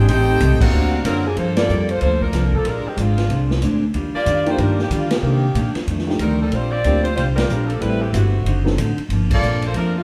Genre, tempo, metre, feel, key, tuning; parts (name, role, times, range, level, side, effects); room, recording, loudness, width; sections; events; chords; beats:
jazz, big band swing; 186 BPM; 4/4; swing 62% on 8ths; G minor; A4 = 440 Hz
brilliant trumpet section; melody; 0.0-1.0 s; C4 to G5; -27 LUFS; equal
warm trombone section; second line; 0.0-1.0 s; Bb3 to G4; -24 LUFS; equal
upright bass; bass; 0.0-10.0 s; F#1 to D3; -22 LUFS; equal
picked steel-string acoustic guitar; accompaniment; 0.1-10.0 s; F2 to F#4; -27 LUFS; equal
bright saxophone section; sustained chords; 0.1-1.4 s; C3 to Eb4; -33 LUFS; equal
swinging big-band drum kit; drums; 0.1-9.8 s; crash cymbal, hi-hat, kick drum, ride cymbal, snare drum; -28 LUFS; equal
bright saxophone section; melody; 1.1-10.0 s; Eb3 to D5; -25 LUFS; equal
warm concert grand piano; accompaniment; 1.7-1.9, 4.5-8.8 s; Eb3 to A4; -27 LUFS; equal
moderate echo chamber reverb, RT60 1.2 s; heard from further back in the room; -19 LUFS; mono
0.0-1.4 A section; 1.4-10.0 B section
band accent 0.6, 1.5, 5.1, 7.3, 9.3
0.1 Am7b5; 0.7 D7alt; 1.4 Gm11; 2.7 Bb9; 3.9 Ebmaj9; 5.2 Cm9; 5.9 F13; 6.5 Bb69; 7.8 Am7; 8.5 D7b9; 9.1 Gm11
| 0.08 0.40 0.72 1.04 | 1.36 1.69 2.01 2.33 | 2.65 2.98 3.30 3.62 | 3.94 4.27 4.59 4.91 | 5.23 5.56 5.88 6.20 | 6.52 6.85 7.17 7.49 | 7.81 8.13 8.46 8.78 | 9.10 9.42 9.74